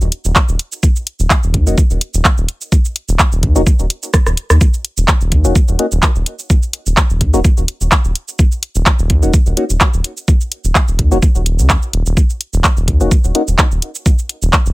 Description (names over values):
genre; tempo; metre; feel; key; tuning
minimal techno; 127 BPM; 4/4; swing 54% on 16ths; Eb minor; A4 = 440 Hz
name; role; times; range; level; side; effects
round analog bass; bass; 0.0-14.7 s; Eb1 to Eb2; -14 LUFS; equal; sidechain pumping
punchy analog drum machine; drums; 0.0-14.7 s; handclaps, hi-hat, rim click, shaker; -16 LUFS; right 1 dB; none
electronic kick drum; drums; 0.4-14.6 s; none; -12 LUFS; equal; overdrive
percussive organ stab; stabs; 1.7-13.4 s; Bb3 to Gb4; -19 LUFS; left 2 dB; analog chorus, tape echo
room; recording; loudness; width
little or no reverb; none; -11 LUFS; side -20 dB against mid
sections
0.0-14.7 A section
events
drum fill 4.1-4.6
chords
0.0 Eb7(no3)